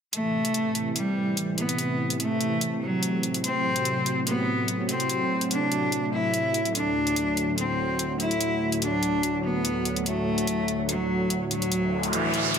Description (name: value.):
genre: heavy wobble dubstep.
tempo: 145 BPM.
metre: 4/4.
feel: swing 54% on 16ths, half-time.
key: A dorian.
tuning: A4 = 440 Hz.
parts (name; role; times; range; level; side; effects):
clear cello; melody; 0.1-12.6 s; E3 to E4; -26 LUFS; equal; tape echo.
supersaw pad; sustained chords; 0.1-12.6 s; D2 to F#3; -28 LUFS; equal; low-pass filter.
electronic hi-hat; drums; 0.1-12.6 s; none; -29 LUFS; left 1 dB; none.
noise sweep; sound effects; 11.9-12.6 s; none; -26 LUFS; right 3 dB; none.
room: moderate digital room reverb, RT60 1.2 s, digital ambience.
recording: none.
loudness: -23 LUFS.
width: side -7 dB against mid.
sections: 0.1-12.6 A section.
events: filter sweep on supersaw synth 0.1-12.6; noise sweep 11.9-12.6.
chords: 0.1 Am; 6.8 D.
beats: | 0.13 0.54 0.96 1.37 | 1.78 2.20 2.61 3.03 | 3.44 3.85 4.27 4.68 | 5.09 5.51 5.92 6.34 | 6.75 7.16 7.58 7.99 | 8.41 8.82 9.23 9.65 | 10.06 10.47 10.89 11.30 | 11.72 12.13 12.54.